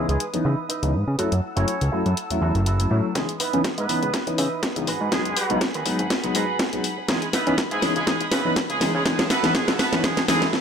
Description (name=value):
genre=filtered disco house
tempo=122 BPM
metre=4/4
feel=swing 54% on 16ths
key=C# minor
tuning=A4 = 439 Hz
part: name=clear horn section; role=melody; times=0.0-10.5 s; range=G#3 to C#5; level=-27 LUFS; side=right 2 dB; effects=sidechain pumping, low-pass filter, digital delay
part: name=warm concert grand piano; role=accompaniment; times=0.0-10.4 s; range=E3 to E4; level=-27 LUFS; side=left 2 dB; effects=phaser, vintage 12-bit sampler grit, sidechain pumping, low-pass filter
part: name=clear chamber violin section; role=sustained chords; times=0.0-10.5 s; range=F#4 to E6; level=-34 LUFS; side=left 1 dB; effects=sidechain pumping, low-pass filter
part: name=electric guitar with an envelope filter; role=riff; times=0.0-10.5 s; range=D#4 to B4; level=-31 LUFS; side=right 6 dB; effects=sidechain pumping, low-pass filter
part: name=fat analog bass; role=bass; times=0.0-10.0 s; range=F#1 to C#3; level=-24 LUFS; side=equal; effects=sidechain pumping, high-pass filter, low-pass filter
part: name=house drum kit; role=drums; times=0.1-10.6 s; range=hi-hat, snare drum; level=-24 LUFS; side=equal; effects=sidechain pumping on hats
part: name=electronic kick drum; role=drums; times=3.2-10.1 s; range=none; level=-33 LUFS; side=equal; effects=none
room=light reverb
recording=none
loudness=-20 LUFS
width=side -7 dB against mid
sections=0.0-3.2 A section; 3.2-10.6 B section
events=build-up 3.2-10.6; drum fill 3.2-10.5; filter sweep on horn section 3.2-10.6; filter sweep 3.2-10.6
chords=0.0 C#m9; 1.2 F#m7; 3.2 C#m9; 4.9 G#m7; 7.1 C#m9; 9.1 F#m7